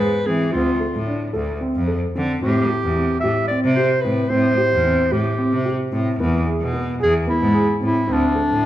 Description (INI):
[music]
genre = contemporary instrumental, chamber music in an uneven meter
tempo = 222 BPM (eighths)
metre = 7/8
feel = straight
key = A minor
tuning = A4 = 438 Hz
[part]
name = bright clarinet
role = melody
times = 0.0-8.7 s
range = D4 to E5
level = -21 LUFS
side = equal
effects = none
[part]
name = dark grand piano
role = arpeggios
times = 0.0-8.7 s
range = B3 to A4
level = -22 LUFS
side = equal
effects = none
[part]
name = rich cello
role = bass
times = 0.0-8.7 s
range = D2 to E3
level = -21 LUFS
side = equal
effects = none
[sound]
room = moderate recital hall reverb, RT60 1.7 s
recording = recorded in a church or concert hall, faint mains hum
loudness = -17 LUFS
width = side -13 dB against mid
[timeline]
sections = 0.0-8.7 A section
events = none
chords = 0.0 E; 0.5 Dm7; 2.4 Am7; 6.2 E; 8.1 D7(no3)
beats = 0.26 | 0.53 0.80 1.07 1.34 1.61 1.88 2.15 | 2.42 2.69 2.96 3.23 3.50 3.77 4.04 | 4.31 4.58 4.85 5.12 5.39 5.66 5.93 | 6.20 6.47 6.74 7.01 7.28 7.55 7.82 | 8.09 8.36 8.63